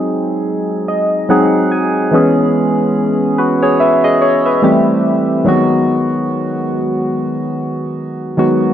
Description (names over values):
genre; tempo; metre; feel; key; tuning
R&B; 72 BPM; 4/4; swing 58% on 16ths; unclear; A4 = 441 Hz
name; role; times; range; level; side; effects
soft electric-piano-like synth keys; solo; 0.0-8.7 s; D#3 to G#5; -12 LUFS; equal; chorus, low-pass filter
room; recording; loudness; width
moderate lush hall reverb, RT60 2.0 s; dark, warm production; -12 LUFS; side -10 dB against mid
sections
0.0-8.7 A section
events
filter sweep on synth keys 0.0-8.7; synth keys fill 0.5-2.1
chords
0.0 G#7; 2.1 C#m7; 4.6 Am7; 5.5 G#m7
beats
0.46 1.29 | 2.13 2.96 3.79 4.63 | 5.46 6.29 7.13 7.96